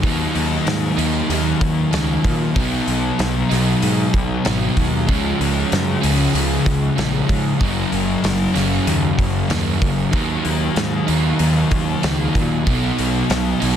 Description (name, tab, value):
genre	rock, shoegaze and dream pop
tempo	95 BPM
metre	4/4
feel	straight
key	unclear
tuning	A4 = 442 Hz
part	overdriven semi-hollow guitar	riff	0.0-13.8 s	Gb2 to Eb4	-22 LUFS	right 12 dB	reverse reverb
part	thick fuzz guitar	riff	0.0-13.8 s	Gb2 to Eb4	-21 LUFS	left 7 dB	distortion, analog chorus
part	fuzz picked electric bass	bass	0.0-13.8 s	Gb1 to Bb2	-22 LUFS	equal	overdrive
part	loose indie drum kit	drums	0.0-13.8 s	hi-hat, kick drum, snare drum	-23 LUFS	equal	none
room	small room reverb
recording	dense, heavily limited modern master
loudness	-16 LUFS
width	side -9 dB against mid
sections	0.0-13.8 A section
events	none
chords	0.0 Ebm; 2.6 Cb; 5.1 Db; 7.6 Gb; 10.1 Ebm; 12.7 Cb